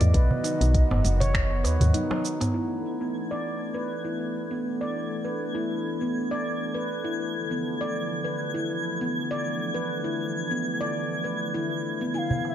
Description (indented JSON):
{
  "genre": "organic downtempo",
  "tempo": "100 BPM",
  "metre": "4/4",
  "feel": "swing 56% on 16ths",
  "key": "unclear",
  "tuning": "A4 = 440 Hz",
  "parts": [
    { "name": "mellow bass bansuri", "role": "melody", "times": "0.0-1.9, 12.2-12.5 s", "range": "D#5 to G#5", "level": "-35 LUFS", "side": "right 1 dB", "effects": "tape echo" },
    { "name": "warm analog pad", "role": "sustained chords", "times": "0.0-12.5 s", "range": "D3 to A4", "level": "-33 LUFS", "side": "equal", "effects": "lush chorus, sidechain pumping" },
    { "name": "woody FM bass", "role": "bass", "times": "0.0-1.9 s", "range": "F#1 to E2", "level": "-22 LUFS", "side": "equal", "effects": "sidechain pumping" },
    { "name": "organic electronic drum kit", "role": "drums", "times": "0.0-2.5 s", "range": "finger snaps, hi-hat, shaker, toms", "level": "-29 LUFS", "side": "equal", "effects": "low-pass filter on hats, low-pass filter on perc, low-pass filter on toms, low-pass filter on snare" },
    { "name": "handpan", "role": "arpeggios", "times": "0.1-12.5 s", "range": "B3 to D5", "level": "-29 LUFS", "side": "equal", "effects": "low-pass filter, ping-pong delay" },
    { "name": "electronic kick drum", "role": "drums", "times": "0.1-1.5 s", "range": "none", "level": "-23 LUFS", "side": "equal", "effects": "none" },
    { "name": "darbuka", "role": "percussion", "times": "0.3-2.5, 12.3-12.5 s", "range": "none", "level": "-31 LUFS", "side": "right 2 dB", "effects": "none" },
    { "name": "twinkling granular texture", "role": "texture", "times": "3.0-12.5 s", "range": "G#6", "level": "-34 LUFS", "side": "left 1 dB", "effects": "built-in reverb" }
  ],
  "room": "light reverb",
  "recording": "dark, warm production",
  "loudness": "-25 LUFS",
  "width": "side -10 dB against mid",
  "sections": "0.0-2.5 A section; 2.5-12.5 B section",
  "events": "break 1.9-2.5; drum fill 1.9-2.5",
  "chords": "0.1 B; 2.5 E7sus4; 7.3 Dm"
}